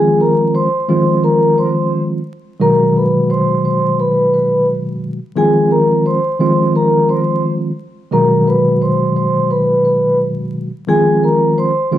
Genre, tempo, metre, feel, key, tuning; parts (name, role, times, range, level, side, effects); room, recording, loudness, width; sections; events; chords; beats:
hip hop; 87 BPM; 4/4; swing 63% on 16ths; A4 = 439 Hz
vibraphone with soft mallets; melody; 0.0-12.0 s; Ab4 to C6; -14 LUFS; left 1 dB; high-pass filter, low-pass filter, slapback echo
mellow tine electric piano; accompaniment; 0.0-12.0 s; Cb3 to Gb4; -15 LUFS; equal; medium stereo tremolo, high-pass filter, low-pass filter
light reverb, studio reverb; vinyl crackle; -12 LUFS; side -12 dB against mid
0.0-12.0 A section
0.0 Fm7; 2.6 Abm7; 5.4 Fm7; 8.1 Abm7; 10.9 Fm7
0.54 1.23 1.92 | 2.61 3.30 3.99 4.68 | 5.37 6.06 6.75 7.44 | 8.13 8.82 9.51 10.20 | 10.89 11.58